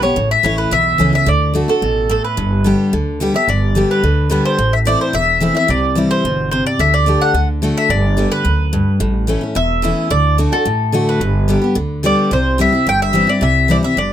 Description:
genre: bluegrass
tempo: 217 BPM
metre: 4/4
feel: straight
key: G major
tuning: A4 = 439 Hz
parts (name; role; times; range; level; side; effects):
- mandolin; melody; 0.0-14.1 s; A4 to G5; -17 LUFS; equal; none
- picked steel-string acoustic guitar; accompaniment; 0.0-14.1 s; E2 to G4; -17 LUFS; left 1 dB; none
- upright bass; bass; 0.0-14.1 s; E1 to D2; -18 LUFS; right 1 dB; none
room: little or no reverb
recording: close, detailed microphones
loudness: -13 LUFS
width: side -10 dB against mid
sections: 0.0-3.5 A section; 3.5-12.3 A section; 12.3-14.1 B section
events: none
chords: 0.2 A; 1.3 D; 2.4 G; 4.6 Am; 5.7 C; 6.8 Dsus4; 7.3 D; 7.9 G; 9.0 A; 10.1 D; 11.2 G; 12.3 C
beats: | 0.17 0.44 0.72 0.99 | 1.27 1.55 1.82 2.10 | 2.37 2.65 2.93 3.20 | 3.48 3.75 4.03 4.31 | 4.58 4.86 5.13 5.41 | 5.69 5.96 6.24 6.52 | 6.79 7.07 7.35 7.62 | 7.90 8.18 8.45 8.73 | 9.00 9.28 9.56 9.83 | 10.11 10.38 10.66 10.94 | 11.21 11.49 11.76 12.04 | 12.31 12.59 12.87 13.14 | 13.42 13.69 13.97

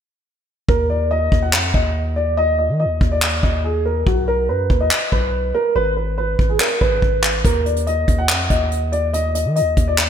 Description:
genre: hip hop, trap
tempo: 142 BPM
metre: 4/4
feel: half-time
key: Eb harmonic minor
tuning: A4 = 444 Hz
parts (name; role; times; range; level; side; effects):
- dark grand piano; melody; 0.7-10.1 s; F#4 to Gb5; -20 LUFS; equal; wide subtle chorus
- long sustained 808-style bass; bass; 0.7-10.1 s; Ab1 to Eb3; -21 LUFS; equal; none
- soft brush drum kit; drums; 0.7-10.1 s; handclaps, hi-hat, kick drum; -18 LUFS; equal; gated reverb
room: moderate lush hall reverb, RT60 1.7 s, studio reverb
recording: bright 1980s-style digital production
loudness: -16 LUFS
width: side -8 dB against mid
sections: 0.7-10.1 A section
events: hi-hats muted 0.7-7.4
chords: 0.7 N.C.; 5.8 Abm; 7.4 Ebmaj7(no3)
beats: | 0.69 1.11 1.53 1.95 | 2.38 2.80 3.22 3.64 | 4.07 4.49 4.91 5.33 | 5.76 6.18 6.60 7.02 | 7.45 7.87 8.29 8.71 | 9.14 9.56 9.98

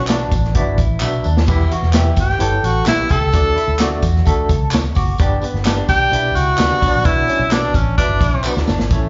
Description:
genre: uptempo 1960s-style soul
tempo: 129 BPM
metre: 4/4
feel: straight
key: unclear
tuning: A4 = 440 Hz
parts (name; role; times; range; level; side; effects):
- clear tenor saxophone; melody; 0.0-8.6 s; C#4 to A4; -20 LUFS; equal; slapback echo
- overdriven tine electric piano; accompaniment; 0.0-9.1 s; G2 to D6; -26 LUFS; equal; fast tremolo
- vintage muted fingered electric bass; bass; 0.0-9.1 s; E1 to E2; -21 LUFS; equal; none
- electric guitar through a small old amp; riff; 0.1-9.1 s; A3 to A4; -29 LUFS; equal; slapback echo
- vintage drum kit; drums; 0.1-9.0 s; crash cymbal, hi-hat, kick drum, snare drum; -21 LUFS; equal; none
- handclaps and tambourine; percussion; 0.1-9.0 s; none; -31 LUFS; equal; none
room: studio reverb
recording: live gig heard through the venue's PA, club reverb, nothing above 7.5 kHz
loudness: -16 LUFS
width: mono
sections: 0.0-8.9 A section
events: drum fill 1.0-1.5, 8.4-8.9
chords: 0.0 Bm; 1.5 Em; 3.3 D; 5.2 G; 6.8 Bm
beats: 0.09 0.56 1.02 | 1.48 1.95 2.41 2.88 | 3.34 3.81 4.27 4.73 | 5.20 5.66 6.12 6.59 | 7.05 7.52 7.98 8.45 | 8.91

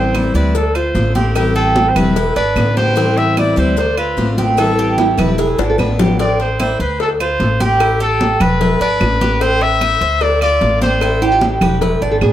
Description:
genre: latin, Cuban son and guajira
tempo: 149 BPM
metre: 4/4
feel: straight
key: A minor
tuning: A4 = 436 Hz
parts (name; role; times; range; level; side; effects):
- warm trumpet; melody; 0.0-11.4 s; G4 to E5; -18 LUFS; left 1 dB; tape echo
- picked steel-string acoustic guitar; accompaniment; 0.0-6.2 s; D3 to F4; -19 LUFS; left 2 dB; none
- Cuban tres; arpeggios; 0.0-12.3 s; C4 to D5; -20 LUFS; right 4 dB; tape echo
- upright bass; bass; 0.0-12.3 s; E1 to D2; -18 LUFS; equal; none
- claves; percussion; 0.1-12.3 s; none; -27 LUFS; right 6 dB; none
- cowbell and bongos; percussion; 0.1-12.3 s; none; -22 LUFS; left 4 dB; none
- congas; percussion; 0.2-12.3 s; none; -20 LUFS; left 1 dB; none
- nylon-string guitar; second line; 5.0-6.2, 11.2-12.3 s; E4 to B4; -19 LUFS; right 3 dB; none
room: light reverb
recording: none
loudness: -12 LUFS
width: side -12 dB against mid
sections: 0.0-6.2 A section; 6.2-12.3 A section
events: drum fill 5.6-6.2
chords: 0.0 Am7; 0.5 Dm7; 1.4 Am7; 2.2 E7; 3.0 Am7; 3.8 Dm7; 4.6 Am7; 5.4 E7; 6.2 Am; 7.0 Dm7; 7.8 A5; 8.6 E7; 9.4 Am; 10.2 Dm7; 11.0 Am7; 11.8 E7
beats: 0.14 0.55 0.95 | 1.36 1.76 2.16 2.57 | 2.97 3.38 3.78 4.18 | 4.58 4.99 5.39 5.79 | 6.20 6.60 7.00 7.40 | 7.80 8.21 8.61 9.01 | 9.41 9.81 10.21 10.61 | 11.02 11.42 11.82 12.22

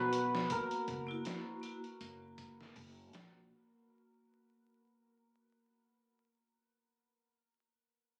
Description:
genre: trip hop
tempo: 80 BPM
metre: 4/4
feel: swing 56% on 16ths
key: unclear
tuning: A4 = 437 Hz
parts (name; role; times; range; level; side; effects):
- santur; melody; 0.0-3.3 s; F#4 to B4; -42 LUFS; equal; tape echo
- warbly tape-like pad; sustained chords; 0.0-3.5 s; F#4; -47 LUFS; equal; chorus, built-in reverb
- Celtic harp; arpeggios; 0.0-6.0 s; A#3 to F#4; -49 LUFS; equal; none
- upright bass; bass; 0.0-3.5 s; F#1 to B1; -53 LUFS; equal; tube saturation
- trip hop sampler-style drum kit; drums; 0.1-3.3 s; hi-hat, kick drum, snare drum; -49 LUFS; equal; none
- vibraphone with hard mallets; accompaniment; 1.1-1.8 s; A#3 to F#4; -48 LUFS; equal; harmonic tremolo
room: light reverb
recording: recorded on a phone in the room, studio ambience, vinyl crackle, compression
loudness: -39 LUFS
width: mono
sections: 0.0-3.5 A section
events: fade-out 0.0-3.5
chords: 0.0 Gmaj7/B (rootless); 0.5 F#7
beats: | 0.51 1.26 2.01 2.76

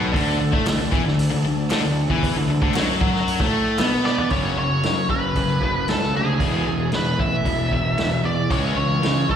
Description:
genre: classic rock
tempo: 115 BPM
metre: 4/4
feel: straight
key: F# minor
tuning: A4 = 440 Hz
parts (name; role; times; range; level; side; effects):
- tonewheel organ; sustained chords; 0.0-4.3 s; A4 to A5; -36 LUFS; right 2 dB; none
- raw garage guitar; riff; 0.0-9.4 s; E2 to C#4; -27 LUFS; right 10 dB; overdrive, slapback echo
- tight distorted guitar; riff; 0.0-9.4 s; E2 to B3; -24 LUFS; left 6 dB; distortion, slapback echo
- fuzz picked electric bass; bass; 0.0-9.4 s; E1 to C#3; -24 LUFS; equal; overdrive
- vintage drum kit; drums; 0.1-9.4 s; hi-hat, kick drum, snare drum, toms; -25 LUFS; equal; none
- group handclap; percussion; 0.7-3.9 s; none; -36 LUFS; right 5 dB; none
- nasal lead guitar with a parked wah; melody; 4.1-9.4 s; G#4 to E5; -24 LUFS; equal; overdrive, slapback echo
room: studio ambience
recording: live gig heard through the venue's PA, recital hall reverb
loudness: -18 LUFS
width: side -8 dB against mid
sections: 0.0-4.3 A section; 4.3-9.4 B section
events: drum fill 4.1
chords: 0.1 D5; 4.3 F#5; 6.4 E; 8.5 C#m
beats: | 0.14 0.67 1.19 1.71 | 2.23 2.75 3.27 3.79 | 4.32 4.84 5.36 5.89 | 6.41 6.93 7.46 7.98 | 8.51 9.03

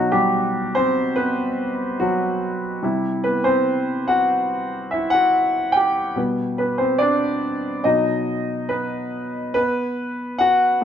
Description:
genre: pop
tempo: 72 BPM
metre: 4/4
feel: straight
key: unclear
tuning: A4 = 438 Hz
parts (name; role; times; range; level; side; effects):
- clear concert grand piano; solo; 0.0-10.8 s; B2 to G5; -18 LUFS; equal; none
room: moderate large studio reverb, RT60 1.0 s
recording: band playing live in one room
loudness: -18 LUFS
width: side -8 dB against mid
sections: 0.0-9.6 A section; 9.6-10.8 B section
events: grand piano solo 0.0-9.6, 9.6-10.8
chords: 0.0 B; 2.8 C; 6.2 Gadd11/B; 7.9 B; 9.6 B5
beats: 0.33 1.17 2.00 | 2.83 3.67 4.50 5.34 | 6.17 7.01 7.86 8.72 | 9.57 10.42

